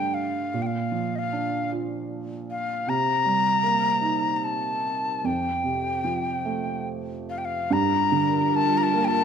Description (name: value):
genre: celtic folk, Celtic slow air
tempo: 75 BPM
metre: 3/4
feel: uneven beats, rubato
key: G minor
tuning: A4 = 440 Hz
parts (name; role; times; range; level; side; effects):
- breathy low whistle; melody; 0.0-9.2 s; Eb5 to Bb5; -24 LUFS; left 3 dB; none
- felt-muted upright piano; accompaniment; 0.0-9.2 s; F2 to F4; -26 LUFS; right 4 dB; none
- clear studio string section; sustained chords; 7.7-9.2 s; G3 to Bb4; -31 LUFS; left 2 dB; none
room: moderate recital hall reverb, RT60 1.4 s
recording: minimal, uncompressed stereo recording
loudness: -22 LUFS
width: side -7 dB against mid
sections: 0.0-7.7 A section; 7.7-9.2 A section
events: none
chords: 0.0 Gsus2; 0.5 Bb; 2.9 Cm7; 5.2 Fadd9; 7.7 Gm7